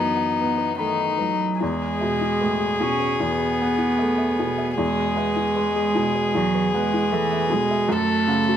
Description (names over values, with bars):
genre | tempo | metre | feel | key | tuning
neoclassical piano and strings | 76 BPM | 4/4 | rubato | E major | A4 = 439 Hz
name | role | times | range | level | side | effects
warm violin | melody | 0.0-8.6 s | D#4 to A4 | -23 LUFS | left 4 dB | none
rich cello | second line | 0.0-8.6 s | D#3 to C#4 | -24 LUFS | right 4 dB | none
felt-muted upright piano | accompaniment | 0.0-8.6 s | E2 to B3 | -26 LUFS | right 1 dB | none
soft round pluck | arpeggios | 0.0-8.6 s | E4 to B5 | -32 LUFS | left 7 dB | chorus, slapback echo
room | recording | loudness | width
light reverb | none | -20 LUFS | side -9 dB against mid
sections
0.0-8.6 A section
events
none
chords
0.0 B/F#; 1.6 E; 7.9 F#m